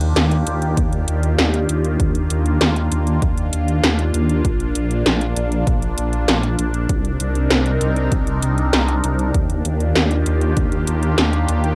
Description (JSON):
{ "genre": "synthwave", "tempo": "98 BPM", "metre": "4/4", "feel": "straight", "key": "Eb major", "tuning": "A4 = 440 Hz", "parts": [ { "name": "phased analog pad", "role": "sustained chords", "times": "0.0-11.8 s", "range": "C3 to Bb4", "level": "-24 LUFS", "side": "equal", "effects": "phaser, chorus, sidechain pumping, cassette tape" }, { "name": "dark detuned saw bass", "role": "bass", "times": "0.0-11.8 s", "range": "Bb1 to Eb2", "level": "-22 LUFS", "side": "equal", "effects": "tube saturation, sidechain pumping" }, { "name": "80s electronic pad drums", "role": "drums", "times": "0.0-11.8 s", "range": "hi-hat, snare drum", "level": "-22 LUFS", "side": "equal", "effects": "none" }, { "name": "electronic kick drum", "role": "drums", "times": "0.8-10.7 s", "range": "none", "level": "-23 LUFS", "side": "equal", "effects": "none" } ], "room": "moderate booth ambience, RT60 0.2 s", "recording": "home recording on cassette", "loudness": "-19 LUFS", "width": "mono", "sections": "0.0-11.8 A section", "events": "none", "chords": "0.0 Ebmaj7; 4.4 Bb; 6.9 Cm7; 9.3 Ebmaj7", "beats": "0.16 0.77 1.39 | 2.00 2.61 3.22 3.83 | 4.45 5.06 5.67 6.28 | 6.89 7.51 8.12 8.73 | 9.34 9.96 10.57 11.18" }